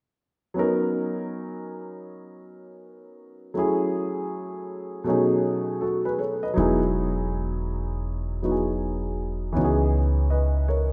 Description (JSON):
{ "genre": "hip hop", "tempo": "80 BPM", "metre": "4/4", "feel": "swing 64% on 16ths", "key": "B major", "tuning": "A4 = 440 Hz", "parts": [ { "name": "dark concert grand piano", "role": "accompaniment", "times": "0.5-10.9 s", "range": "B2 to D#5", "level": "-28 LUFS", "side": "equal", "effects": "none" }, { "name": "upright bass", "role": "bass", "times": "6.6-10.9 s", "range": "E1 to C#2", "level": "-27 LUFS", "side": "equal", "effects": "none" } ], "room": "wet lush hall reverb, RT60 2.1 s", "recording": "rough home demo mix", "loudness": "-25 LUFS", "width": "mono", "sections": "0.6-10.9 A section", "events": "none", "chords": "0.6 Bmaj9; 3.6 F#m7; 5.1 B13; 6.6 Emaj9; 9.6 C#m7", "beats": "| 0.56 1.31 2.06 2.81 | 3.56 4.31 5.06 5.81 | 6.56 7.31 8.06 8.81 | 9.56 10.31" }